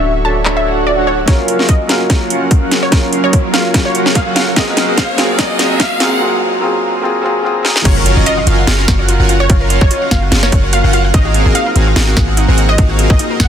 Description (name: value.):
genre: future bass.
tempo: 146 BPM.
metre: 4/4.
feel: swing 54% on 16ths, half-time.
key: Gb lydian.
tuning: A4 = 440 Hz.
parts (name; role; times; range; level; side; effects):
wide unison pluck; melody; 0.0-13.5 s; C#5 to A5; -20 LUFS; equal; sidechain pumping, ping-pong delay.
felt-muted upright piano; accompaniment; 0.0-7.9 s; F#3 to Bb4; -19 LUFS; left 1 dB; sidechain pumping, ping-pong delay.
ethereal airy pad; sustained chords; 0.0-13.5 s; Gb3 to C#6; -25 LUFS; equal; ensemble chorus, built-in reverb, tremolo, sidechain pumping.
soft supersaw; riff; 0.0-13.5 s; C4 to F#5; -18 LUFS; right 1 dB; sidechain pumping, low-pass filter, ping-pong delay.
warm 808-style bass; bass; 0.0-1.3, 7.9-13.5 s; D1 to Ab1; -14 LUFS; equal; sidechain pumping.
trap drum kit; drums; 0.5-13.5 s; crash cymbal, handclaps, hi-hat, snare drum; -17 LUFS; equal; overdrive, high-pass filter on snare, high-pass filter on hats, high-pass filter on cymbals, high-pass filter on room.
swell, riser and impact; sound effects; 0.6-9.5 s; none; -22 LUFS; right 1 dB; none.
electronic kick drum; drums; 1.3-13.5 s; none; -12 LUFS; equal; overdrive.
wide unison pluck; arpeggios; 7.9-13.4 s; Eb4 to Gb5; -23 LUFS; left 2 dB; sidechain pumping, ping-pong delay.
room: light reverb.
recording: dense, heavily limited modern master, high-pass filter.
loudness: -10 LUFS.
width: side -9 dB against mid.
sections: 0.0-1.3 A section; 1.3-7.9 B section; 7.9-13.5 C section.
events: swell 0.6-1.3; build-up 1.3-7.9; drum fill 1.3-6.2, 7.6; riser 1.3-6.2; filter sweep on supersaw synth 1.3-7.9; drop 7.9-13.5; impact 7.9-9.5.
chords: 0.0 Dmaj9; 1.3 Gbmaj7; 4.6 Ab13; 7.9 Gbmaj7; 11.1 Ab13.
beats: 0.04 0.46 0.87 | 1.28 1.69 2.10 2.51 | 2.92 3.33 3.74 4.15 | 4.56 4.97 5.39 5.80 | 6.21 6.62 7.03 7.44 | 7.85 8.26 8.67 9.09 | 9.50 9.91 10.32 10.73 | 11.14 11.55 11.96 12.37 | 12.78 13.19.